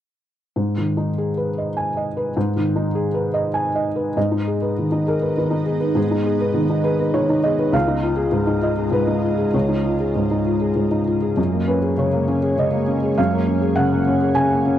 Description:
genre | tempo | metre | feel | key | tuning
neoclassical piano and strings | 100 BPM | 3/4 | rubato | G# dorian | A4 = 436 Hz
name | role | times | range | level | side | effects
felt-muted upright piano | accompaniment | 0.6-14.8 s | C#2 to G#5 | -18 LUFS | equal | none
ethereal airy pad | sustained chords | 4.6-14.8 s | G#3 to D#5 | -27 LUFS | right 4 dB | ensemble chorus, built-in reverb
room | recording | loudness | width
studio reverb | dry, close 1970s-style studio recording | -18 LUFS | side -11 dB against mid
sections
0.6-4.2 A section; 4.2-14.8 B section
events
none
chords
0.6 G#m; 7.7 C#add9; 11.4 F#add9

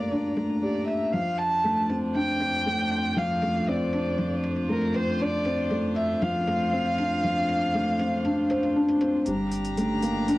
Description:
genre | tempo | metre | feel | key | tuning
piano and strings electronica | 118 BPM | 4/4 | straight | unclear | A4 = 440 Hz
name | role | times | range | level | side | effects
dark violin | melody | 0.0-8.8 s | Bb4 to A5 | -28 LUFS | equal | cassette tape
dark string quartet | sustained chords | 0.0-10.4 s | F2 to Bb5 | -34 LUFS | equal | cassette tape
felt-muted upright piano | riff | 0.0-10.4 s | F3 to C5 | -25 LUFS | equal | cassette tape
electronic hi-hat | drums | 0.1-10.4 s | none | -46 LUFS | equal | overdrive, low-pass filter on hats, cassette tape
warm sub bass | bass | 9.3-10.4 s | G1 | -37 LUFS | equal | none
riser | sound effects | 9.9-10.4 s | none | -43 LUFS | right 2 dB | none
room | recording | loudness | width
wet studio reverb, RT60 0.5 s | home recording on cassette | -23 LUFS | side -18 dB against mid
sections
0.0-9.3 A section; 9.3-10.4 B section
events
build-up 9.3-10.4; filter sweep 9.3-10.4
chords
0.0 Gmadd9; 1.1 Dm7/F; 9.3 Gmadd9

